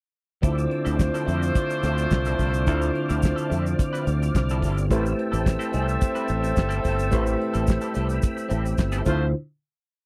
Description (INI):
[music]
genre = disco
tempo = 108 BPM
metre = 4/4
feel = straight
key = D dorian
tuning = A4 = 439 Hz
[part]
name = electric guitar at the edge of break-up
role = accompaniment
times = 0.4-9.2 s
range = F3 to B4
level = -37 LUFS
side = equal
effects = wah
[part]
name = mellow tine electric piano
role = accompaniment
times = 0.4-9.4 s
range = D3 to C5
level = -31 LUFS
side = equal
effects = none
[part]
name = tonewheel organ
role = sustained chords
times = 0.4-9.3 s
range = D3 to F6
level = -36 LUFS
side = equal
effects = chorus vibrato, slow rotary speaker
[part]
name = clear horn section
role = stabs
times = 0.4-9.2 s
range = A3 to E5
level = -32 LUFS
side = equal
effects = none
[part]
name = modern bright fingered electric bass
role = bass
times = 0.4-9.3 s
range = G1 to F2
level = -27 LUFS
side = equal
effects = none
[part]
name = damped 70s drum kit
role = drums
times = 0.4-9.2 s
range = crash cymbal, handclaps, hi-hat, kick drum, snare drum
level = -25 LUFS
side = equal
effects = none
[part]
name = tube shaker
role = percussion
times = 0.4-9.3 s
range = none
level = -48 LUFS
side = equal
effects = none
[sound]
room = little or no reverb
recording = dry, close 1970s-style studio recording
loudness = -24 LUFS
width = mono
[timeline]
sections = 0.4-9.3 groove; 9.3-10.1 final hit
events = none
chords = 0.4 Dm9; 4.9 Am7; 9.1 Dm9; 9.3 N.C.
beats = | 0.44 1.00 1.56 2.12 | 2.67 3.23 3.79 4.35 | 4.90 5.46 6.01 6.57 | 7.12 7.68 8.23 8.78 | 9.34